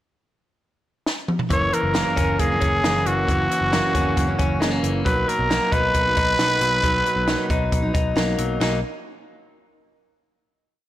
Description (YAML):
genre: jangly indie pop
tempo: 135 BPM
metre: 4/4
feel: straight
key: B major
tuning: A4 = 441 Hz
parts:
  - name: compact cocktail drum kit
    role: drums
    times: 1.1-8.7 s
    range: hi-hat, kick drum, ride cymbal, snare drum, toms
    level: -25 LUFS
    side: equal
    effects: none
  - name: growling trumpet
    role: melody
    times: 1.5-8.2 s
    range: F#4 to C#5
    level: -21 LUFS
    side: equal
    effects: slapback echo
  - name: picked steel-string acoustic guitar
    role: accompaniment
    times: 1.5-8.8 s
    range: F#2 to D#4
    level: -27 LUFS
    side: right 3 dB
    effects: none
  - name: direct-recorded clean electric guitar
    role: arpeggios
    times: 1.5-8.8 s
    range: E3 to D#4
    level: -27 LUFS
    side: left 4 dB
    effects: slapback echo
  - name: vintage muted picked electric bass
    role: bass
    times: 1.5-8.8 s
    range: F#1 to B1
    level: -26 LUFS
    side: equal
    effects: none
room: light reverb, studio reverb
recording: blown-out, overdriven recording, overdrive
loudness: -18 LUFS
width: side -13 dB against mid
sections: 0.0-1.5 pickup bar; 1.5-8.6 verse; 8.6-10.4 final chord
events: drum fill 1.1-1.5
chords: 0.0 N.C.; 1.5 F#7; 5.1 Bmaj7